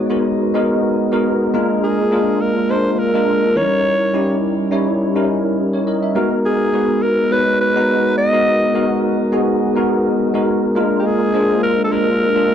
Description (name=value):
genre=pop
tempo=104 BPM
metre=4/4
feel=swing 54% on 16ths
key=unclear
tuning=A4 = 440 Hz
part: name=bell-like tine electric piano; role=accompaniment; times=0.0-12.5 s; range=E3 to A#5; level=-16 LUFS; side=equal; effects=ensemble chorus
part: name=breathy alto saxophone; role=melody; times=1.8-12.5 s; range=G4 to D#5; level=-18 LUFS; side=equal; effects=tape echo
room=light reverb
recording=dry, close 1970s-style studio recording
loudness=-14 LUFS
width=side -9 dB against mid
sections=0.0-12.5 A section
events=none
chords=0.0 G#m9; 1.5 A#7; 3.6 D#7b9; 6.2 G#m9; 10.8 A#7